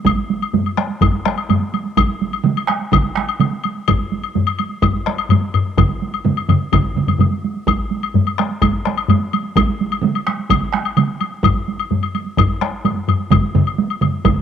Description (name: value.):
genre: japanese traditional, taiko drum ensemble.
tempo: 127 BPM.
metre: 4/4.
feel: straight.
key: none.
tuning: none.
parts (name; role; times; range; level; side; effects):
solo taiko drums; percussion; 0.1-14.4 s; none; -20 LUFS; right 8 dB; none.
taiko ensemble; percussion; 0.1-14.4 s; none; -21 LUFS; left 1 dB; none.
woodblock; percussion; 0.1-14.4 s; none; -22 LUFS; left 9 dB; none.
taiko ensemble; percussion; 0.5-14.4 s; none; -18 LUFS; left 4 dB; none.
taiko ensemble; percussion; 2.4-14.4 s; none; -20 LUFS; right 6 dB; none.
room: moderate spring reverb, RT60 2.1 s.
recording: home recording on cassette.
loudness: -15 LUFS.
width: side -9 dB against mid.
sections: 0.1-14.4 A section.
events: none.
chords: none.